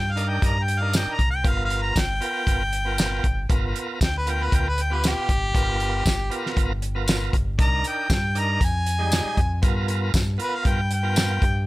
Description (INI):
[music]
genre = straight-eighth soul blues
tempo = 117 BPM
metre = 4/4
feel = straight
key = unclear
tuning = A4 = 440 Hz
[part]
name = bright harmonica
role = melody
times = 0.0-11.7 s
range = G4 to Bb5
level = -26 LUFS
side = left 1 dB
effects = overdrive
[part]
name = deep dub fingered electric bass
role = bass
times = 0.0-11.7 s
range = G1 to G2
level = -25 LUFS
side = equal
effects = none
[part]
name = bright tonewheel organ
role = accompaniment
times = 0.2-11.5 s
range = G3 to Bb4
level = -30 LUFS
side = right 3 dB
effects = slow rotary speaker, overdrive
[part]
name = warm soul drum kit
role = drums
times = 0.2-11.5 s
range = hi-hat, kick drum, snare drum, tambourine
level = -23 LUFS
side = equal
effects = none
[sound]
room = little or no reverb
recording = none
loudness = -20 LUFS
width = side -18 dB against mid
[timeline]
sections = 0.0-11.7 A section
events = harmonica solo 0.0-11.7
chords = 0.0 Cm7; 1.4 G7#9; 7.6 Cm7; 8.6 Fm7; 9.6 G7#9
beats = 0.42 0.94 | 1.45 1.96 2.48 2.99 | 3.50 4.01 4.52 5.03 | 5.54 6.06 6.57 7.08 | 7.59 8.10 8.61 9.12 | 9.63 10.14 10.66 11.17